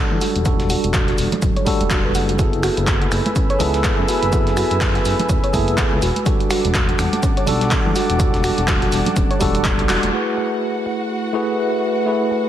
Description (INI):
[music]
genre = deep house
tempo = 124 BPM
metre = 4/4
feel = swing 58% on 16ths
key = unclear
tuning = A4 = 441 Hz
[part]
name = tine electric piano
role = stabs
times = 0.0-12.5 s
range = G3 to B4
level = -21 LUFS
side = right 1 dB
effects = medium stereo tremolo, sidechain pumping, low-pass filter, analog delay
[part]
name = smooth synth bass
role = bass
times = 0.0-10.1 s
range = D1 to F#2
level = -22 LUFS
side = equal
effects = sidechain pumping
[part]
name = congas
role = percussion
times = 0.1-10.1 s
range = none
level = -28 LUFS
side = right 3 dB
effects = sidechain pumping on perc
[part]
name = soft round pluck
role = arpeggios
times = 0.2-10.0 s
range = F#3 to F#5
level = -27 LUFS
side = right 1 dB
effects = chorus, sidechain pumping, analog delay
[part]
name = electronic shaker and snare drum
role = drums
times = 0.2-10.0 s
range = none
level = -35 LUFS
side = left 1 dB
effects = none
[part]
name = punchy analog drum machine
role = drums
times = 0.2-12.4 s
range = finger snaps, handclaps, hi-hat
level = -24 LUFS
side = equal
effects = low-pass filter on hats, studio reverb, low-pass filter on snare
[part]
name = electronic kick drum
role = drums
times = 0.5-9.8 s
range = none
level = -20 LUFS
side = equal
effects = studio reverb
[part]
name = airy breathy pad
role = sustained chords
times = 2.8-12.5 s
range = G3 to E6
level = -25 LUFS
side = equal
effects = chorus, sidechain pumping
[part]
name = rich symphonic violin section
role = texture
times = 10.1-12.5 s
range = F#4 to F#5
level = -30 LUFS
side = equal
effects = sidechain pumping
[sound]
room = light reverb, digital ambience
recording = dense, heavily limited modern master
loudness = -16 LUFS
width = side -11 dB against mid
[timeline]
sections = 0.0-10.1 A section; 10.1-12.5 B section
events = drum fill 9.9; band accent 9.9; filter sweep on analog synth pad 10.1-12.5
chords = 0.0 Em11; 2.4 F#m11; 6.0 Em11; 10.1 F#m11